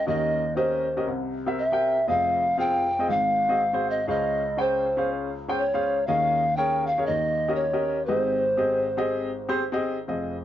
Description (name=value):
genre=gospel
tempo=120 BPM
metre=4/4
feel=swing 61% on 8ths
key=Ab major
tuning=A4 = 441 Hz
part: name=mellow hollow polished pan flute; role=melody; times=0.0-9.5 s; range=C5 to G5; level=-24 LUFS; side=equal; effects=none
part: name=warm upright piano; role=accompaniment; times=0.0-10.4 s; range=F1 to G5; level=-27 LUFS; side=left 1 dB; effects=none
room=moderate plate reverb, RT60 2.5 s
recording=nothing above 7.5 kHz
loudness=-22 LUFS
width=side -11 dB against mid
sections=0.0-10.1 A section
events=none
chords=0.1 Eb7; 1.1 C7; 2.1 Fm7; 3.1 Ab7; 4.1 Dbmaj7; 6.1 Eb7sus4; 7.1 Eb7; 8.1 Abmaj7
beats=| 0.08 0.58 1.08 1.58 | 2.08 2.58 3.08 3.58 | 4.08 4.58 5.08 5.58 | 6.08 6.58 7.08 7.58 | 8.08 8.58 9.08 9.58 | 10.09